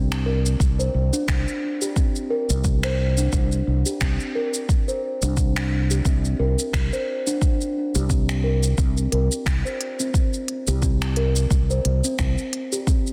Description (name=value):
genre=organic downtempo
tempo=88 BPM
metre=4/4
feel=swing 57% on 16ths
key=unclear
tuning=A4 = 440 Hz
part: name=steel tongue drum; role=arpeggios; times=0.0-13.1 s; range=C4 to C5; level=-29 LUFS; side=equal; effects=digital delay
part: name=mellow fretless electric bass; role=bass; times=0.0-12.3 s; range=C2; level=-24 LUFS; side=equal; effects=subtle chorus
part: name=organic electronic drum kit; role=drums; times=0.1-13.1 s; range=finger snaps, hi-hat, shaker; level=-32 LUFS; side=equal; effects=soft clipping on snare
part: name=electronic kick drum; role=drums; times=0.6-13.0 s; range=none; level=-24 LUFS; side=equal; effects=none
room=light reverb, digital ambience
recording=dense, heavily limited modern master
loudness=-22 LUFS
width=mono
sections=0.0-13.1 A section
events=none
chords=0.0 C5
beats=| 0.60 1.28 1.97 2.65 | 3.33 4.01 4.69 5.37 | 6.05 6.74 7.42 8.10 | 8.78 9.46 10.15 10.83 | 11.51 12.19 12.87